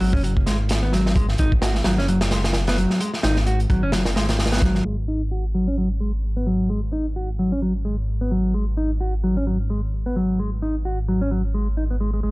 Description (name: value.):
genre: breakbeat, breaks.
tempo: 130 BPM.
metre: 4/4.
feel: swing 57% on 16ths.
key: G# minor.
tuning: A4 = 441 Hz.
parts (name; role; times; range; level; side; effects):
mellow electric guitar; riff; 0.0-12.3 s; F#3 to F#4; -24 LUFS; equal; low-pass filter, tape echo.
dark detuned saw bass; bass; 0.0-12.3 s; F#1 to G#1; -23 LUFS; equal; tube saturation.
crunchy breakbeat drum kit; drums; 0.0-4.8 s; hi-hat, kick drum, snare drum; -22 LUFS; equal; none.
room: moderate studio reverb, RT60 0.6 s.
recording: dark, warm production, low-pass filter.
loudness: -19 LUFS.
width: side -21 dB against mid.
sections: 0.0-4.9 A section; 4.9-12.3 B section.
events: filter sweep on clean electric guitar 4.9-12.3; filter sweep 4.9-12.3.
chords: none.